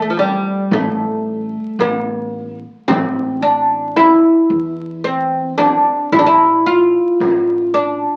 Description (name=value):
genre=Arabic maqam ensemble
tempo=111 BPM (eighths)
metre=10/8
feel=straight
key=A maqam bayati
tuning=A4 = 439 Hz
part: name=oud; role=melody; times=0.0-8.2 s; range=F3 to F4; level=-16 LUFS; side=equal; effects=none
part: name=upright bass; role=bass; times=0.0-8.0 s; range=A1 to E2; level=-32 LUFS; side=equal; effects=none
part: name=frame drum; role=percussion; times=0.2-7.5 s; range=none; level=-25 LUFS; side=equal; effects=none
room=moderate studio reverb, RT60 0.5 s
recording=very old 78 rpm record, vinyl crackle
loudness=-15 LUFS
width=mono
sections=0.0-8.2 A section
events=none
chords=none